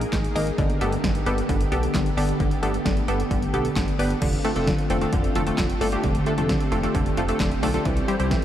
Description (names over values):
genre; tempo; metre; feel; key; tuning
synth-pop; 132 BPM; 4/4; straight; unclear; A4 = 440 Hz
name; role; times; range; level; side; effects
funky polysynth comp; accompaniment; 0.0-8.3 s; G3 to C5; -26 LUFS; left 1 dB; chorus
ensemble organ-string; sustained chords; 0.0-8.4 s; D3 to Ab4; -28 LUFS; equal; ensemble chorus
analog pluck; arpeggios; 0.0-8.4 s; D3 to Eb5; -30 LUFS; right 1 dB; chorus, phaser, tape echo
chorused synth bass; bass; 0.0-8.4 s; F1 to C2; -27 LUFS; equal; none
punchy analog drum machine; drums; 0.0-8.4 s; crash cymbal, handclaps, hi-hat, kick drum, snare drum; -26 LUFS; equal; overdrive
room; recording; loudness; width
moderate huge ambient reverb, RT60 7.8 s; dreamy mix soaked in reverb; -20 LUFS; side -11 dB against mid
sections
0.0-4.2 A section; 4.2-8.4 B section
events
none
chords
0.0 Absus2; 0.6 Gadd9; 4.2 F6; 7.9 C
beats
0.13 | 0.58 1.04 1.49 1.95 | 2.40 2.86 3.31 3.77 | 4.22 4.67 5.13 5.58 | 6.04 6.49 6.95 7.40 | 7.86 8.31